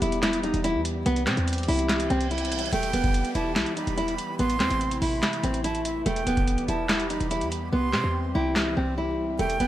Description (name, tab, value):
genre	hip hop, trap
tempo	144 BPM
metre	4/4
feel	half-time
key	E minor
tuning	A4 = 439 Hz
part	nylon-string guitar	melody	0.0-9.7 s	A3 to E4	-27 LUFS	equal	tape echo
part	hollow soft pad	sustained chords	0.0-9.7 s	C3 to G4	-34 LUFS	equal	chorus
part	short 808-style bass	bass	0.0-9.7 s	D#1 to C3	-30 LUFS	equal	none
part	booming analog drum machine	drums	0.0-9.7 s	handclaps, hi-hat, kick drum, snare drum	-28 LUFS	equal	vintage 12-bit sampler grit
part	reverse cymbal and downlifter	sound effects	2.1-6.1 s	none	-38 LUFS	right 4 dB	none
part	breathy bright jazz flute	second line	2.7-9.7 s	E5 to C6	-32 LUFS	right 4 dB	tape echo
room	little or no reverb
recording	vinyl crackle, lossy compression artefacts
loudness	-23 LUFS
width	side -13 dB against mid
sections	0.0-2.7 A section; 2.7-9.7 B section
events	reverse cymbal 2.1-2.7; hi-hats muted 7.7-9.4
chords	0.0 Em; 1.1 C; 2.7 Em; 4.4 Am; 6.1 Em; 7.7 C